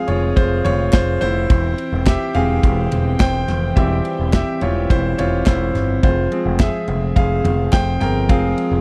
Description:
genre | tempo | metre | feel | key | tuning
piano-driven pop | 106 BPM | 4/4 | straight | F harmonic minor | A4 = 441 Hz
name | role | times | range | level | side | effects
bright concert grand piano | accompaniment | 0.0-8.8 s | E3 to G5 | -23 LUFS | equal | none
chorused pulse-width pad | sustained chords | 0.0-8.8 s | E3 to G5 | -28 LUFS | equal | none
picked electric bass | bass | 0.1-8.8 s | E1 to G1 | -23 LUFS | equal | none
modern studio drum kit | drums | 0.1-8.7 s | kick drum, ride cymbal, snare drum, toms | -20 LUFS | equal | none
group handclap | percussion | 0.9-7.9 s | none | -37 LUFS | equal | none
room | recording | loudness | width
little or no reverb | dry, close 1970s-style studio recording | -18 LUFS | mono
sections
0.0-8.8 A section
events
grand piano solo 0.0-8.8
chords
0.0 Fm; 1.5 C/E; 6.0 Fm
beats
0.37 0.93 | 1.50 2.07 2.63 3.20 | 3.77 4.33 4.90 5.46 | 6.03 6.60 7.16 7.73 | 8.29

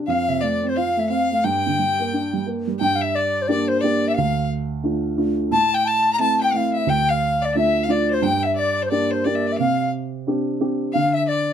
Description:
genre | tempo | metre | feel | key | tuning
celtic folk, Celtic hornpipe | 177 BPM | 4/4 | swing 62% on 8ths | G dorian | A4 = 440 Hz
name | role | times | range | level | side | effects
dark upright piano | accompaniment | 0.0-11.5 s | D2 to G4 | -22 LUFS | right 2 dB | none
baroque flute | melody | 0.1-11.5 s | C5 to Bb5 | -21 LUFS | left 2 dB | none
rich fiddle | second line | 0.1-11.5 s | C5 to Bb5 | -26 LUFS | left 5 dB | none
room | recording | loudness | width
light reverb | close, detailed microphones | -18 LUFS | side -8 dB against mid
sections
0.0-2.8 A section; 2.8-11.5 A section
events
none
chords
0.1 F; 1.4 Gm; 4.2 Dm; 5.5 Am; 6.9 Dm; 8.2 Gm; 9.6 Csus2; 10.9 Dm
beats
| 0.09 0.43 0.77 1.11 | 1.45 1.78 2.12 2.46 | 2.80 3.14 3.48 3.82 | 4.16 4.50 4.84 5.18 | 5.52 5.86 6.19 6.53 | 6.87 7.21 7.55 7.89 | 8.23 8.57 8.90 9.24 | 9.58 9.92 10.26 10.60 | 10.94 11.28

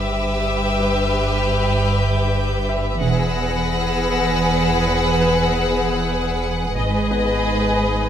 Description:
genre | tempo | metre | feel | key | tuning
cinematic, suspense film score | 95 BPM | 3/4 | straight | unclear | A4 = 442 Hz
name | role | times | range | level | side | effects
clear studio violin section | melody | 0.0-8.1 s | D#5 to F#5 | -25 LUFS | left 3 dB | none
rich studio violin section | second line | 0.0-8.1 s | G4 to B4 | -22 LUFS | equal | none
rich studio cello section | bass | 0.0-8.1 s | E2 to G#2 | -22 LUFS | right 2 dB | none
warm sub bass | drone | 0.0-8.1 s | E1 to G#1 | -27 LUFS | left 1 dB | none
bright grand piano | texture | 0.0-8.1 s | B3 to E5 | -30 LUFS | left 4 dB | none
rich studio violin section | texture | 0.0-6.4 s | D6 to Bb6 | -29 LUFS | left 4 dB | none
rich studio double bass section | bass | 3.0-3.6, 6.8-7.4 s | E1 to G#1 | -24 LUFS | right 3 dB | none
room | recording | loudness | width
light reverb | close, detailed microphones | -17 LUFS | side -9 dB against mid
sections
0.0-8.1 A section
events
none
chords
0.0 G6; 3.0 Eadd9; 6.8 G#m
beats
0.47 | 1.11 1.74 2.37 | 3.00 3.63 4.26 | 4.88 5.51 6.14 | 6.76 7.40 8.04

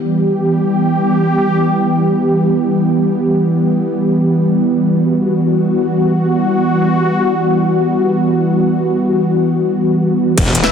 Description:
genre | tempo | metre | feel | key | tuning
dark technical drum and bass | free time | none | none | E minor | A4 = 440 Hz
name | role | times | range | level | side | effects
sweeping resonant pad | sustained chords | 0.0-10.7 s | E3 to G4 | -12 LUFS | equal | chorus, sidechain pumping
snarling distorted saw bass | bass | 10.4-10.7 s | E1 | -15 LUFS | equal | distortion, overdrive, sidechain pumping
crunchy breakbeat drum kit | drums | 10.4-10.7 s | ride cymbal, snare drum | -21 LUFS | equal | high-pass filter on cymbals, high-pass filter on snare, high-pass filter on room
dubstep drum kit | drums | 10.4-10.7 s | crash cymbal, hi-hat, snare drum | -16 LUFS | left 1 dB | none
electronic kick drum | drums | 10.4 s | none | -18 LUFS | equal | distortion
impact | sound effects | 10.5-10.7 s | none | -28 LUFS | left 2 dB | none
orchestra-hit-like synth stab | stabs | 10.6-10.7 s | E4 to E5 | -15 LUFS | left 5 dB | built-in reverb
room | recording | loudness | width
light reverb, digital ambience | none | -12 LUFS | side -7 dB against mid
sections
0.0-10.4 A section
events
impact 10.4-10.7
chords
0.0 Em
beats
free time

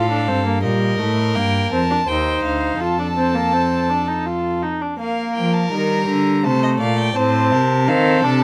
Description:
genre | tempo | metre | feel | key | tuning
classical, baroque-style fugue for string quartet | 83 BPM | 3/4 | straight | Bb major | A4 = 440 Hz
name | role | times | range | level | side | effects
warm violin | melody | 0.0-8.4 s | Eb5 to Bb5 | -26 LUFS | equal | none
rich violin | second line | 0.0-8.4 s | A4 to D5 | -28 LUFS | equal | none
warm viola | accompaniment | 0.0-8.4 s | G3 to F4 | -23 LUFS | equal | none
rich cello | bass | 0.0-8.4 s | D2 to F3 | -23 LUFS | equal | none
room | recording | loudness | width
moderate small room reverb, RT60 0.5 s | none | -19 LUFS | mono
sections
0.0-5.0 A section; 5.0-8.4 B section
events
none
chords
0.0 F/A; 0.6 Eb; 2.1 Cm/Eb; 2.8 F; 5.0 Bb; 6.4 Am/C; 7.2 F7/A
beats
| 0.64 1.36 2.08 | 2.81 3.54 4.27 | 5.00 5.72 6.45 | 7.16 7.88

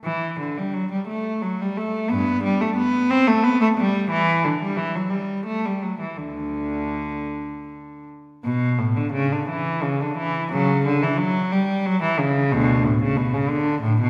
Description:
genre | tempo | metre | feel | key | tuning
classical, baroque-style suite movement for unaccompanied cello | 51-61 BPM (dotted quarters) | 6/8 | rubato | G major, D major from 4.1 s | A4 = 440 Hz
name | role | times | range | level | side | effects
rich cello | solo | 0.0-14.1 s | D2 to C4 | -22 LUFS | equal | none
room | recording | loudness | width
wet scoring stage reverb, RT60 1.6 s | recorded in a church or concert hall | -22 LUFS | mono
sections
0.0-8.4 A section; 8.4-14.1 B section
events
none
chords
none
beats
| 0.04 1.06 | 2.09 3.10 | 4.09 5.12 | 6.19 7.31 | 8.45 9.50 | 10.52 11.51 | 12.52 13.50

